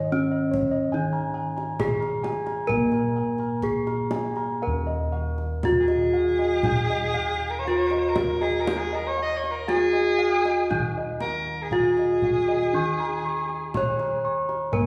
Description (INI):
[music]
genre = Javanese gamelan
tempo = 59-76 BPM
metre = 4/4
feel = straight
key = Eb slendro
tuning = A4 = 440 Hz
[part]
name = gamelan-type bronze metallophone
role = melody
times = 0.0-14.9 s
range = Db4-40c to Db5-40c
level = -27 LUFS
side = equal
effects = none
[part]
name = gamelan-type bronze metallophone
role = accompaniment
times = 0.0-4.6, 12.7-14.9 s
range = Eb3 to Bb3+20c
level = -33 LUFS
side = equal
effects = none
[part]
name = gamelan-type bossed gongs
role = arpeggios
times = 0.0-14.9 s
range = Db5-40c to Db6-40c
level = -34 LUFS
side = equal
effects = none
[part]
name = gamelan-type bossed gongs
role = bass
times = 0.0-14.9 s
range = Eb2 to Bb4+20c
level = -35 LUFS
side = equal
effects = none
[part]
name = kendang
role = percussion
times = 0.5-14.9 s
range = none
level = -35 LUFS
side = equal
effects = none
[part]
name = warm soprano saxophone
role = second line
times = 5.8-14.4 s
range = Ab4-21c to Eb5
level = -30 LUFS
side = equal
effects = none
[sound]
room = wet recital hall reverb, RT60 1.8 s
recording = recorded in a church or concert hall, studio ambience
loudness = -24 LUFS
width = mono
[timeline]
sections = 0.0-4.6 A section; 4.6-14.9 B section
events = none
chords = none